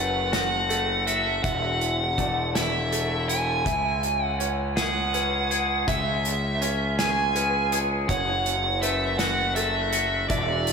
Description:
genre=post-rock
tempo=54 BPM (dotted quarters)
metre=6/8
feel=straight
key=unclear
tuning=A4 = 439 Hz
part: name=overdriven electric guitar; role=melody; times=0.0-10.7 s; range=D5 to G#5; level=-25 LUFS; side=right 2 dB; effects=tape echo
part: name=felt-muted upright piano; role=arpeggios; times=0.0-10.7 s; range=A4 to E5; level=-34 LUFS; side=right 1 dB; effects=tape echo
part: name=twangy electric guitar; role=arpeggios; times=0.0-10.7 s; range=E2 to G#4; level=-30 LUFS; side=left 3 dB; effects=lush chorus, tape echo
part: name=fuzz picked electric bass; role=bass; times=0.0-10.7 s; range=E1 to C#2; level=-29 LUFS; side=left 1 dB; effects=overdrive
part: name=loose indie drum kit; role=drums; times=0.3-10.7 s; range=hi-hat, kick drum, snare drum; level=-30 LUFS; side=equal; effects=none
room=wet lush hall reverb, RT60 2.0 s, studio reverb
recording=dreamy mix soaked in reverb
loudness=-22 LUFS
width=side -5 dB against mid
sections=0.0-10.7 A section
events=none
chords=0.0 F#m; 1.4 E7sus4; 3.7 C#m7; 8.1 F#m

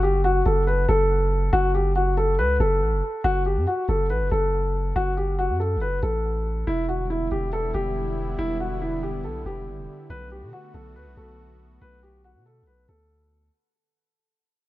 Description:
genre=hip hop, drill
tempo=140 BPM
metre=4/4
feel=half-time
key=F# phrygian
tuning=A4 = 440 Hz
part: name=dark baby grand piano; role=melody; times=0.0-13.5 s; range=E4 to B4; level=-24 LUFS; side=left 1 dB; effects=low-pass filter, ping-pong delay
part: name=long sustained 808-style bass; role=bass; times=0.0-13.5 s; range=E1 to B2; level=-25 LUFS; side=equal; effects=none
part: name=warm analog pad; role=sustained chords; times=6.7-13.5 s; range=D3 to F#4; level=-37 LUFS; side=left 1 dB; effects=chorus
room=small room reverb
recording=dark, warm production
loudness=-21 LUFS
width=side -16 dB against mid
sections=0.0-13.5 A section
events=fade-out 1.9-13.5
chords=0.0 F#m; 6.7 Em7; 10.1 Bm7

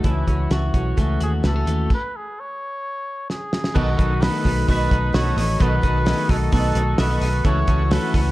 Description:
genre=jangly indie pop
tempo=130 BPM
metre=4/4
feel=straight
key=B mixolydian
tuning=A4 = 439 Hz
part: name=picked twelve-string acoustic guitar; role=accompaniment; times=0.0-8.3 s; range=B2 to F#4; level=-30 LUFS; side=right 4 dB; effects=none
part: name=twelve-string electric guitar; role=arpeggios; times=0.0-8.3 s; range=D#3 to F#4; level=-26 LUFS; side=left 5 dB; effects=spring reverb
part: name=vintage muted fingered electric bass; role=bass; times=0.0-8.3 s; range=A1 to D#2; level=-21 LUFS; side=equal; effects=none
part: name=cloth-damped thuddy drum kit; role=drums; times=0.0-8.3 s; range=crash cymbal, hi-hat, kick drum, snare drum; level=-22 LUFS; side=equal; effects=none
part: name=trumpet with cup mute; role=melody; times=0.1-8.3 s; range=E4 to C#5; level=-26 LUFS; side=equal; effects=none
part: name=combo organ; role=accompaniment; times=3.7-8.2 s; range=B3 to A4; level=-30 LUFS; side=right 3 dB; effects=none
part: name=warm analog pad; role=sustained chords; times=3.8-8.3 s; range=A4 to C#6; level=-34 LUFS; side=right 1 dB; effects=chorus, tremolo
room=light reverb, small room ambience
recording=dark, warm production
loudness=-18 LUFS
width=side -17 dB against mid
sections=0.0-3.8 A section; 3.8-8.3 B section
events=stop 1.9-3.8; drum fill 3.3-3.8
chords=0.0 A6; 1.9 N.C.; 3.8 B7; 7.5 A6/C#

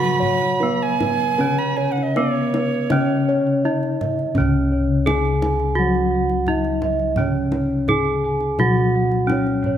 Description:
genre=Javanese gamelan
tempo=74-85 BPM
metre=4/4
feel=straight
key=C# slendro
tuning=A4 = 440 Hz
part: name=gamelan-type bronze metallophone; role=melody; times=0.0-9.8 s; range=B3-40c to G#4+20c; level=-22 LUFS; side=equal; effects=tape echo
part: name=breathy alto recorder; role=second line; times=0.0-3.4 s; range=C#5 to B5-41c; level=-23 LUFS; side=right 5 dB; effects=none
part: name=gamelan-type bronze metallophone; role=accompaniment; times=0.0-9.8 s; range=C#3 to F#3-20c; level=-26 LUFS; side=left 2 dB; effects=none
part: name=gamelan-type bossed gongs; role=arpeggios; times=0.0-4.0 s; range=B4-40c to D#5+40c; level=-27 LUFS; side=left 2 dB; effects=none
part: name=gamelan-type bronze metallophone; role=arpeggios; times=0.0-9.8 s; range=B4-40c to G#5+20c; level=-27 LUFS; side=right 6 dB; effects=none
part: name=gamelan-type bossed gongs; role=bass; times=0.0-9.8 s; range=C#2 to D#4+40c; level=-24 LUFS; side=left 2 dB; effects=none
part: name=kendang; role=percussion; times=0.0-9.8 s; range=none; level=-29 LUFS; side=left 1 dB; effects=none
room=moderate concert hall reverb, RT60 1.8 s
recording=none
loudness=-17 LUFS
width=side -10 dB against mid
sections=0.0-4.4 A section; 4.4-9.8 B section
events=none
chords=none

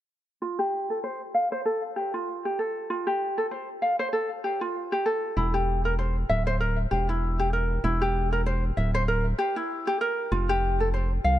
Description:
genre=folktronica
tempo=97 BPM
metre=4/4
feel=swing 56% on 16ths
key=F major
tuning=A4 = 441 Hz
part: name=ukulele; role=arpeggios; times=0.4-11.4 s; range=E4 to F5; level=-26 LUFS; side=equal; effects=vintage 12-bit sampler grit, low-pass filter, ping-pong delay
part: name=round analog bass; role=bass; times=5.4-11.4 s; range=D1 to C2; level=-26 LUFS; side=equal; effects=none
room=light reverb, studio reverb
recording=none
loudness=-24 LUFS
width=side -13 dB against mid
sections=0.4-10.3 A section; 10.3-11.4 B section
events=filter sweep on ukulele 0.4-10.3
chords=0.4 Fadd9; 5.4 C7 (rootless); 10.3 Fsus2

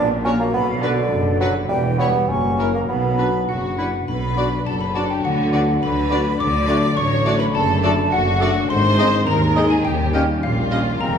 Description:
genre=cinematic, playful, whimsical film cue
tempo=104 BPM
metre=2/4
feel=straight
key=B minor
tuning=A4 = 440 Hz
part: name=bright concert flute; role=second line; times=0.0-11.2 s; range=D5 to D6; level=-26 LUFS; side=equal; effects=none
part: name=warm bassoon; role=accompaniment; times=0.0-11.2 s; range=D3 to C#4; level=-25 LUFS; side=right 3 dB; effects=none
part: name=mellow French horn section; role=sustained chords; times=0.0-11.2 s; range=B2 to Eb4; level=-27 LUFS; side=left 3 dB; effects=none
part: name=concert harp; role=arpeggios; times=0.0-11.2 s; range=E2 to B4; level=-27 LUFS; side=left 5 dB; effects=none
part: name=clear studio cello section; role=bass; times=0.0-11.2 s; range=Eb2 to D3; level=-26 LUFS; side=right 2 dB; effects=none
part: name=mellow tuba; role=bass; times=0.0-11.2 s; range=E1 to Eb2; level=-26 LUFS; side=right 1 dB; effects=none
part: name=warm studio double bass section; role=bass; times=0.0-11.2 s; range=E1 to Eb2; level=-26 LUFS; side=right 2 dB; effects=none
part: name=clear clarinet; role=second line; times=0.2-11.2 s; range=C4 to F#4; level=-31 LUFS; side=left 1 dB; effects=none
part: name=dark studio violin section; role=second line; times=0.2-11.2 s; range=F4 to D5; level=-26 LUFS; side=left 2 dB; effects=none
part: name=rich studio violin section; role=melody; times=0.3-10.8 s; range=A#4 to Eb5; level=-31 LUFS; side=left 2 dB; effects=none
part: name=warm oboe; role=second line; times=0.3-11.2 s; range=A#4 to F5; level=-33 LUFS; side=equal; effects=none
part: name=warm studio viola section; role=accompaniment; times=0.3-10.8 s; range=C4 to A4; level=-30 LUFS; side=right 1 dB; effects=none
part: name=xylophone with rubber mallets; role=melody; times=3.5-11.2 s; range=F5 to D6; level=-27 LUFS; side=left 2 dB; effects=none
room=wet recital hall reverb, RT60 1.6 s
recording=recorded in a church or concert hall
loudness=-16 LUFS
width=side -7 dB against mid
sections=0.0-4.1 A section; 4.1-11.2 B section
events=none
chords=0.0 F#/A#; 0.5 Bm; 1.7 C#dim/E; 2.3 F#7; 2.9 Bm; 5.2 Bm/D; 6.4 D; 7.5 D/F#; 8.7 Ab; 9.9 Eb9

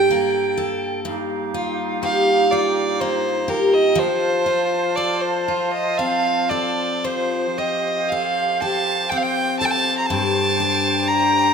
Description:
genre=celtic folk, Celtic slow air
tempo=60 BPM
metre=3/4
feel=uneven beats, rubato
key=unclear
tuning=A4 = 441 Hz
part: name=rich fiddle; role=melody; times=0.0-11.5 s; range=Bb4 to Bb5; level=-20 LUFS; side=right 1 dB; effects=none
part: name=picked steel-string acoustic guitar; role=accompaniment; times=0.0-11.5 s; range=G2 to A4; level=-22 LUFS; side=left 1 dB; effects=none
part: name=bright small flute group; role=sustained chords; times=0.0-11.5 s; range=Eb4 to A5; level=-26 LUFS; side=right 4 dB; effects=none
room=moderate concert hall reverb, RT60 2.1 s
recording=minimal, uncompressed stereo recording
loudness=-18 LUFS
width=side -6 dB against mid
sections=0.0-11.5 A section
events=none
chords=0.0 Gmadd9; 1.0 Ebadd9/G; 4.0 F; 7.0 Fadd9; 10.1 Gmadd9

